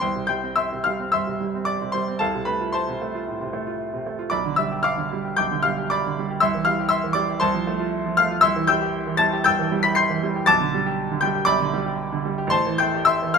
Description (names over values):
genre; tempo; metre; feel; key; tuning
classical, romantic character piece for solo piano; 105-123 BPM; 4/4; rubato; C major; A4 = 438 Hz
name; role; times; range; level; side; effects
clear baby grand piano; solo; 0.0-13.4 s; A1 to C7; -20 LUFS; equal; none
room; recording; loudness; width
light reverb; minimal, uncompressed stereo recording; -20 LUFS; side -5 dB against mid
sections
0.0-13.4 A section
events
none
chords
0.0 C; 2.2 F/C; 4.3 G7/B; 6.4 C; 7.4 F/C; 8.4 C; 10.5 G/B; 12.5 Am7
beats
| 0.02 0.58 1.13 1.68 | 2.21 2.74 3.27 3.80 | 4.32 4.84 5.37 5.90 | 6.41 6.91 7.41 7.93 | 8.44 8.94 9.45 9.96 | 10.47 10.98 11.47 11.99 | 12.52 13.07